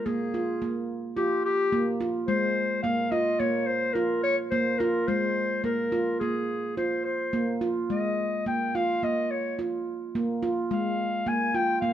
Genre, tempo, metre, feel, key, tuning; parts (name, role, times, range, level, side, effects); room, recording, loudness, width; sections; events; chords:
contemporary instrumental, contemporary; 107 BPM; 5/4; straight; Bb dorian; A4 = 441 Hz
warm clarinet; melody; 0.0-11.9 s; G4 to Ab5; -27 LUFS; left 2 dB
handpan; arpeggios; 0.1-11.9 s; Ab3 to F4; -28 LUFS; right 2 dB
light reverb; close, detailed microphones; -25 LUFS; side -10 dB against mid
0.0-11.9 A section
0.0 Bb5